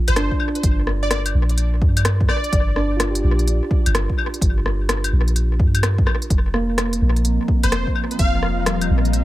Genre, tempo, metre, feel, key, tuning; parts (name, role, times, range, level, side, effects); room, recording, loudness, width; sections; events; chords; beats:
future garage; 127 BPM; 4/4; swing 65% on 16ths; G minor; A4 = 438 Hz
bright tine electric piano; accompaniment; 0.0-9.2 s; G3 to G4; -27 LUFS; right 2 dB; sidechain pumping, low-pass filter, tape echo
plucky unison lead; melody; 0.1-3.0, 7.6-8.7 s; C5 to F5; -28 LUFS; equal; wide subtle chorus, tape echo
soft 808-style bass; bass; 0.1-9.2 s; F1 to G2; -19 LUFS; equal; sidechain pumping
deep house drum kit; drums; 0.1-9.2 s; claves, hi-hat, rim click; -24 LUFS; left 2 dB; tape echo
electronic kick drum; drums; 0.3-8.3 s; -19 LUFS; equal
ethereal airy pad; sustained chords; 6.9-9.2 s; F3 to Bb5; -26 LUFS; left 4 dB; ensemble chorus, built-in reverb, phaser, sidechain pumping
light reverb, digital ambience; echo-heavy mix; -16 LUFS; side -16 dB against mid
0.0-9.2 A section
filter sweep on tine electric piano 0.0-9.2
0.0 Gm7; 6.3 F7sus4
0.16 | 0.64 1.11 1.58 2.05 | 2.52 3.00 3.47 3.94 | 4.42 4.89 5.36 5.83 | 6.30 6.78 7.25 7.72 | 8.19 8.67 9.14